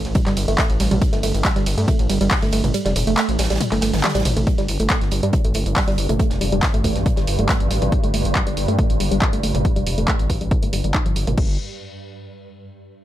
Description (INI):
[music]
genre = driving peak-time techno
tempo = 139 BPM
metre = 4/4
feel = straight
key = unclear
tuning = A4 = 440 Hz
[part]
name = gritty driven synth bass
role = bass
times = 0.0-11.6 s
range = F1 to G2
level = -22 LUFS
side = equal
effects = tube saturation, sidechain pumping
[part]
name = punchy analog drum machine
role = drums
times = 0.0-11.5 s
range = crash cymbal, handclaps, hi-hat, ride cymbal, toms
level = -24 LUFS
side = equal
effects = sidechain pumping on toms, sidechain pumping on hats, sidechain pumping on cymbals
[part]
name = tight funk drum kit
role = drums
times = 0.1-7.8 s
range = hi-hat, snare drum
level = -34 LUFS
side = right 3 dB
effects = sidechain pumping on hats, high-pass filter on hats, high-pass filter on snare, high-pass filter on room
[part]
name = woody wave-folded pluck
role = riff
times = 0.2-11.6 s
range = F3 to Eb4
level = -24 LUFS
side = right 1 dB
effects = chorus, sidechain pumping, digital delay
[part]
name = electronic kick drum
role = drums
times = 0.2-11.5 s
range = none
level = -20 LUFS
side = equal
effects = none
[part]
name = swarming drone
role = drone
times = 5.6-11.4 s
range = G2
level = -28 LUFS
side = right 2 dB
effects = built-in reverb, sidechain pumping
[sound]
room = little or no reverb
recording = none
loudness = -17 LUFS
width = side -13 dB against mid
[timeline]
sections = 0.0-4.5 A section; 4.5-11.4 B section; 11.4-13.0 C section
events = drop 0.0-4.5; kick drops out 2.7-4.5; drum fill 3.6-4.5; filter sweep on analog synth bass 4.5-11.4; filter sweep on synth arpeggio sound 4.5-11.4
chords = none